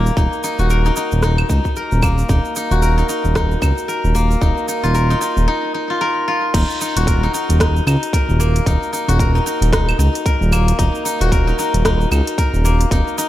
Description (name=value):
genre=organic downtempo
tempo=113 BPM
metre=4/4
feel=swing 58% on 16ths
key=Eb minor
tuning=A4 = 440 Hz
part: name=steel-string zither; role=arpeggios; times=0.0-13.3 s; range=Bb3 to Bb4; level=-20 LUFS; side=left 2 dB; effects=tape echo
part: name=smooth synth bass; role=bass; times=0.0-13.0 s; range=Eb1 to Db2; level=-15 LUFS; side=equal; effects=sidechain pumping
part: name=afro-pop drum kit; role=drums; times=0.1-13.3 s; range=claves, crash cymbal, hi-hat, rim click, shaker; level=-24 LUFS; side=right 2 dB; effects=studio reverb
part: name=electronic kick drum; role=drums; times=0.2-13.0 s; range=none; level=-19 LUFS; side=equal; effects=studio reverb
room=digital ambience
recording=none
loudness=-14 LUFS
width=side -14 dB against mid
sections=0.0-6.5 A section; 6.5-13.3 B section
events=break 5.5-6.5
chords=0.0 Ebm; 4.4 Ebsus2; 6.5 Ebm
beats=| 0.17 0.70 1.23 1.76 | 2.29 2.83 3.36 3.89 | 4.42 4.95 5.48 6.01 | 6.54 7.07 7.60 8.13 | 8.67 9.20 9.73 10.26 | 10.79 11.32 11.85 12.38 | 12.91